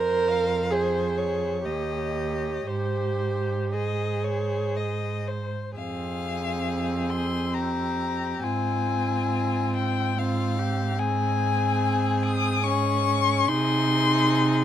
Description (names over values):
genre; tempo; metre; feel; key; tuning
classical, slow romantic movement for string quartet; 57-75 BPM; 3/4; rubato; Ab major, F minor from 5.8 s; A4 = 440 Hz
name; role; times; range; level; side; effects
clear violin; melody; 0.0-14.6 s; C5 to Eb6; -29 LUFS; left 8 dB; none
rich violin; second line; 0.0-14.6 s; F4 to F5; -32 LUFS; left 4 dB; none
rich viola; accompaniment; 0.0-14.6 s; C4 to Bb4; -28 LUFS; right 2 dB; none
rich cello; bass; 0.0-14.6 s; Eb2 to C3; -28 LUFS; right 3 dB; none
room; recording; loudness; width
little or no reverb; close, detailed microphones; -23 LUFS; side -10 dB against mid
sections
0.0-5.8 A section; 5.8-14.6 B section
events
none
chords
0.0 Fm; 1.7 Eb7; 2.7 Ab; 5.8 Fm; 8.4 Fm/Ab; 11.0 Ab; 13.5 Ab/C